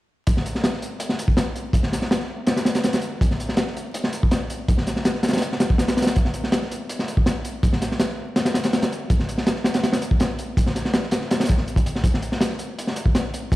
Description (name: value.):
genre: drum and bass.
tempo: 163 BPM.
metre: 4/4.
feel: straight.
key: none.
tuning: none.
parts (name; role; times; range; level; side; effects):
crunchy breakbeat drum kit; drums; 0.3-13.6 s; hi-hat, kick drum, snare drum; -20 LUFS; equal; none.
room: light reverb.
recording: played on a big sound system in a bare room, stone room reverb, vinyl crackle.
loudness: -20 LUFS.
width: side -17 dB against mid.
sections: 0.3-12.0 A section; 12.0-13.6 B section.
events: build-up 12.0-13.6.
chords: none.